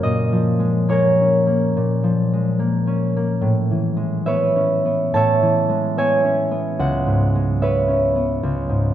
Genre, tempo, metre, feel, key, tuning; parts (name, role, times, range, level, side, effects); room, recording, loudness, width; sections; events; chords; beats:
classical, solo harp piece; 72 BPM; 4/4; rubato; A4 = 440 Hz
concert harp; solo; 0.0-8.9 s; Db2 to A5; -16 LUFS; equal
wet scoring stage reverb, RT60 1.6 s; dark, warm production; -16 LUFS; side -11 dB against mid
0.0-8.9 A section
0.0 Bbm7; 3.4 Amaj9; 6.8 Dbm7
| 0.03 0.88 1.74 2.58 | 3.41 4.24 5.12 5.96 | 6.79 7.60 8.42